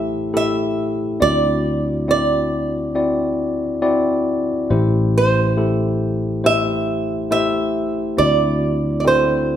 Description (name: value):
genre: acoustic folk-pop ballad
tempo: 69 BPM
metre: 4/4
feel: straight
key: A dorian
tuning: A4 = 439 Hz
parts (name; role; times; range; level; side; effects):
- flamenco guitar; melody; 0.0-9.6 s; C5 to E5; -20 LUFS; right 3 dB; none
- tine electric piano; accompaniment; 0.0-9.6 s; A1 to D5; -20 LUFS; left 2 dB; none
- sustaining fretless electric bass; bass; 0.0-9.6 s; A1 to D2; -23 LUFS; equal; none
room: moderate recital hall reverb, RT60 1.4 s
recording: recorded in a church or concert hall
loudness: -16 LUFS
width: side -10 dB against mid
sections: 0.0-9.6 A section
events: none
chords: 0.0 Am7; 1.2 D9; 4.7 Am7; 8.2 D9